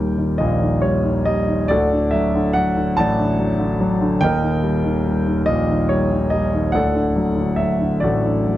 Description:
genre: classical, lyrical solo piano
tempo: 48 BPM (dotted quarters)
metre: 6/8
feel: rubato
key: unclear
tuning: A4 = 440 Hz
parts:
  - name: warm concert grand piano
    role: solo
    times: 0.0-8.6 s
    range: D1 to A5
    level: -16 LUFS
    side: equal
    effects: none
room: moderate studio reverb, RT60 0.6 s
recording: dark, warm production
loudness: -16 LUFS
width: side -14 dB against mid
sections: 0.0-8.6 A section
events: none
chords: 0.0 Eb; 1.7 D; 4.2 Eb; 6.7 D

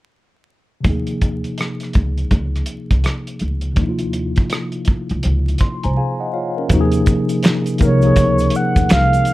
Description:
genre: R&B, neo-soul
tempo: 82 BPM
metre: 4/4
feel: swing 62% on 16ths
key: unclear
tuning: A4 = 440 Hz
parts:
  - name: mellow tine electric piano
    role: accompaniment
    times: 0.8-9.3 s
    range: C3 to C6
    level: -20 LUFS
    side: left 1 dB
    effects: medium stereo tremolo
  - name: cloth-damped thuddy drum kit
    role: drums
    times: 0.8-9.3 s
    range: finger snaps, hi-hat, kick drum, rim click, snare drum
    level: -17 LUFS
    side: equal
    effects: none
  - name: upright bass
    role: bass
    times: 0.9-9.2 s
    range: C2 to Eb2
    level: -19 LUFS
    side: equal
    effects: none
  - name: tube shaker and finger snaps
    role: percussion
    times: 6.7-9.3 s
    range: none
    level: -35 LUFS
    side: right 4 dB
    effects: none
  - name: mellow horn-like synth lead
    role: melody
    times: 7.8-9.3 s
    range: Db5 to Gb5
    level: -17 LUFS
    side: equal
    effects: chorus
room: little or no reverb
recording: dark, warm production, vinyl crackle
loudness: -15 LUFS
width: side -17 dB against mid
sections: 0.8-6.7 A section; 6.7-9.3 B section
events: tine electric piano fill 5.2-6.7; break 6.0-6.7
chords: 0.8 Eb9sus4

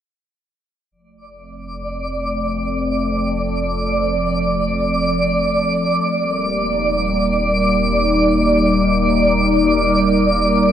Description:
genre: ambient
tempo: free time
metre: none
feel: none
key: unclear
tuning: A4 = 440 Hz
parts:
  - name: phased analog pad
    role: sustained chords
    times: 0.9-10.7 s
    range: F3 to Bb4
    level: -19 LUFS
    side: equal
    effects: phaser, chorus
  - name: warm sub bass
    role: bass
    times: 0.9-10.7 s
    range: Eb1 to F1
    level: -26 LUFS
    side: equal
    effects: none
  - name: twinkling granular texture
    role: texture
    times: 1.7-10.7 s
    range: D5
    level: -18 LUFS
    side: right 1 dB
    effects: built-in reverb, shimmer reverb
room: wet huge ambient reverb, RT60 7.6 s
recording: none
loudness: -15 LUFS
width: side -9 dB against mid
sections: 0.9-10.7 A section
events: fade-in on analog synth pad 0.9-10.7; fade-in on sub bass 0.9-10.7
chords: 0.9 F; 6.0 Eb

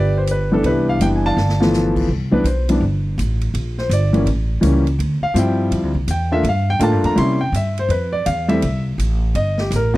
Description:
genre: jazz piano trio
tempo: 165 BPM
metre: 4/4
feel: swing 64% on 8ths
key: C major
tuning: A4 = 440 Hz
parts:
  - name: warm grand piano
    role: melody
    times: 0.0-10.0 s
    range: E3 to C6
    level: -18 LUFS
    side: left 1 dB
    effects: none
  - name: upright bass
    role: bass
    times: 0.0-10.0 s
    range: F#1 to C3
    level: -19 LUFS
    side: equal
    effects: none
  - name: swinging big-band drum kit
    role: drums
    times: 0.3-10.0 s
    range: crash cymbal, hi-hat, kick drum, ride cymbal, snare drum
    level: -32 LUFS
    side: equal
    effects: none
room: small room ambience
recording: dry, close 1970s-style studio recording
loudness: -16 LUFS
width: side -17 dB against mid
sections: 0.0-2.1 A section; 2.1-10.0 B section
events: drum fill 1.4-1.7; grand piano solo 2.1-10.0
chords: 0.0 Cmaj7; 1.4 G13; 2.1 Cmaj7(no3); 3.5 Em7b5 (rootless); 4.3 A7b9; 5.0 Dm11; 6.4 Gm9; 7.2 C7b9; 7.9 Fmaj7; 9.3 Gm(b13)

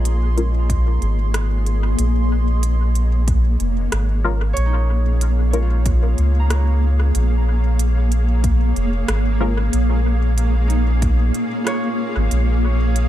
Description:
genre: ambient dub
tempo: 93 BPM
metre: 4/4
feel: straight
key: Bb minor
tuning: A4 = 440 Hz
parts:
  - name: granular cloud pad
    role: sustained chords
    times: 0.0-13.1 s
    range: Bb3 to F5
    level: -24 LUFS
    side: equal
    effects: built-in reverb
  - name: Celtic harp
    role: arpeggios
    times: 0.0-13.1 s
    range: Eb4 to Bb5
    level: -32 LUFS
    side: right 3 dB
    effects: dub echo
  - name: soft dub sub bass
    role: bass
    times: 0.0-13.1 s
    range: F1 to Db2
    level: -17 LUFS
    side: equal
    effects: none
  - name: bubbling stepped-filter texture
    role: texture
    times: 0.0-2.0 s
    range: C6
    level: -35 LUFS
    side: right 10 dB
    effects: chorus, built-in reverb
  - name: organic electronic drum kit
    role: drums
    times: 0.1-13.1 s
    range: hi-hat, rim click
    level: -28 LUFS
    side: equal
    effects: overdrive, studio reverb, dub echo
  - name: filtered dub chord stab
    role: stabs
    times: 0.4-9.6 s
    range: Ab3 to Bb4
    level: -27 LUFS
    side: left 3 dB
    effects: phaser, ensemble chorus, cassette tape, dub echo
  - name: electronic kick drum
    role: drums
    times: 0.7-11.2 s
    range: none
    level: -21 LUFS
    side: equal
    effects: studio reverb
room: digital ambience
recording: echo-heavy mix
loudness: -16 LUFS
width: side -13 dB against mid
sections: 0.0-2.0 A section; 2.0-13.1 B section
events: filter sweep on synth stab 0.0-2.0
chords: 0.0 Bbm7

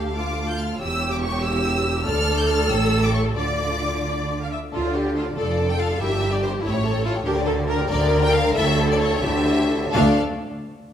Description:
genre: quick classical-period movement for string orchestra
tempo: 83-97 BPM (dotted quarters)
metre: 6/8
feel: rubato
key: D minor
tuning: A4 = 439 Hz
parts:
  - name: clear studio violin section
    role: second line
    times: 0.0-10.2 s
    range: D4 to F5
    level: -29 LUFS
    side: left 4 dB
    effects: none
  - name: rich studio viola section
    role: accompaniment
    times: 0.0-10.2 s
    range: A3 to F5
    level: -24 LUFS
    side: equal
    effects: none
  - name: rich studio cello section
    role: bass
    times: 0.0-10.2 s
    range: D2 to D3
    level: -27 LUFS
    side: right 1 dB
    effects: none
  - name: rich studio double bass section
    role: bass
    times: 0.0-10.2 s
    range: E1 to D2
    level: -24 LUFS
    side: right 1 dB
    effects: none
  - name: clear studio violin section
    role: melody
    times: 0.2-10.2 s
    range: C5 to G6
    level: -27 LUFS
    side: left 2 dB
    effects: none
room: wet recital hall reverb, RT60 1.9 s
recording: none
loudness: -19 LUFS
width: side -9 dB against mid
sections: 0.0-4.7 A section; 4.7-9.9 B section; 9.9-10.9 C section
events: slowing down 6.6-9.9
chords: 0.0 Dm; 0.8 C#dim/E; 2.1 Dm; 2.7 A7; 3.4 Dm; 5.4 Dm/F; 6.0 Em7b5/G; 6.6 A7; 7.3 Gm/D; 8.6 A7/D; 9.9 D5

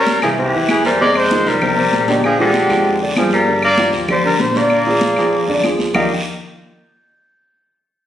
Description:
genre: Afro-Cuban jazz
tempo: 194 BPM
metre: 4/4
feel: straight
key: Eb major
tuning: A4 = 436 Hz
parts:
  - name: breathy trumpet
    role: melody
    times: 0.0-6.1 s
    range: G4 to Eb5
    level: -17 LUFS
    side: equal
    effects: plate reverb
  - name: clear tenor saxophone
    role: second line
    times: 0.0-6.1 s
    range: D3 to Bb3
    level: -19 LUFS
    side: left 2 dB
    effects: none
  - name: warm grand piano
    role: accompaniment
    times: 0.0-6.1 s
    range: C3 to Db6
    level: -18 LUFS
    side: right 1 dB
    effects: none
  - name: upright bass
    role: bass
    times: 0.0-6.1 s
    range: G1 to G2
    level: -27 LUFS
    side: equal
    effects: none
  - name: congas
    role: percussion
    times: 0.1-6.0 s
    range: none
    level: -23 LUFS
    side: left 1 dB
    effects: none
  - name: guiro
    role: percussion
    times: 0.1-6.0 s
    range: none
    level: -28 LUFS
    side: right 2 dB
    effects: none
  - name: claves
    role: percussion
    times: 0.2-6.0 s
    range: none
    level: -25 LUFS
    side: left 2 dB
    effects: none
room: moderate studio reverb, RT60 0.9 s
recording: recorded on a phone in the room, studio reverb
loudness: -13 LUFS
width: side -11 dB against mid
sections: 0.0-1.0 A section; 1.0-5.9 B section; 5.9-7.2 C section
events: none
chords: 0.4 C; 1.0 Fm9; 2.2 Bb6; 3.5 Gm7; 4.7 Bb7; 5.9 Ebmaj9

